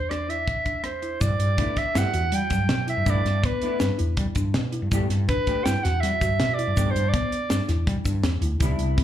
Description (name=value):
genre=progressive instrumental, band music in an uneven meter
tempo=162 BPM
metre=5/4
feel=straight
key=unclear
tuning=A4 = 440 Hz
part: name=mellow soprano saxophone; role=melody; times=0.0-7.7 s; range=B4 to G5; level=-26 LUFS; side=right 2 dB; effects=slapback echo, digital delay
part: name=woody fretless electric bass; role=bass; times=0.0-9.0 s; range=C2 to G3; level=-25 LUFS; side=equal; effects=none
part: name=folk marimba with soft mallets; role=arpeggios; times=0.1-9.0 s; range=F#3 to F#4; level=-33 LUFS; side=left 3 dB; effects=slapback echo, digital delay
part: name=tight funk drum kit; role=drums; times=0.1-9.0 s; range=hi-hat, kick drum, rim click, snare drum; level=-27 LUFS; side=equal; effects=none
part: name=egg shaker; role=percussion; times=1.2-8.8 s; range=none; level=-42 LUFS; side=left 3 dB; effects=none
part: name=hollow-body jazz guitar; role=accompaniment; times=1.6-9.0 s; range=G3 to G4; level=-32 LUFS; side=left 1 dB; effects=double-tracked left and right, slapback echo
room=light reverb, studio ambience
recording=live gig heard through the venue's PA, club reverb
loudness=-21 LUFS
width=side -11 dB against mid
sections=0.0-1.2 A section; 1.2-9.0 B section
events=none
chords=0.0 E5; 1.2 G6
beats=0.11 0.48 0.85 | 1.22 1.59 1.96 2.33 2.70 | 3.07 3.44 3.81 4.18 4.55 | 4.92 5.29 5.65 6.02 6.39 | 6.76 7.13 7.50 7.87 8.24 | 8.61 8.98